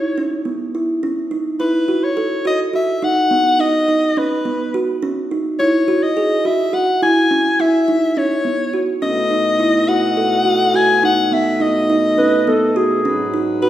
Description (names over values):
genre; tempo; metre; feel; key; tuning
contemporary instrumental, chamber music in an uneven meter; 210 BPM (eighths); 7/8; straight; unclear; A4 = 440 Hz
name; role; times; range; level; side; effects
breathy soprano saxophone; melody; 0.0-13.7 s; B4 to G#5; -18 LUFS; left 2 dB; none
kalimba; arpeggios; 0.0-13.7 s; B3 to A4; -17 LUFS; right 2 dB; none
pedal harmonium; sustained chords; 9.0-13.7 s; G#2 to D#5; -23 LUFS; left 1 dB; none
dark clarinet; second line; 12.2-13.5 s; G#4 to B4; -18 LUFS; equal; none
room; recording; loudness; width
wet recital hall reverb, RT60 1.5 s; heard from further back in the room; -14 LUFS; side -12 dB against mid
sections
0.0-1.0 A section; 1.0-13.7 B section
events
none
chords
0.0 C#m7; 1.0 B; 5.0 C#m; 9.0 B7; 13.1 G#m7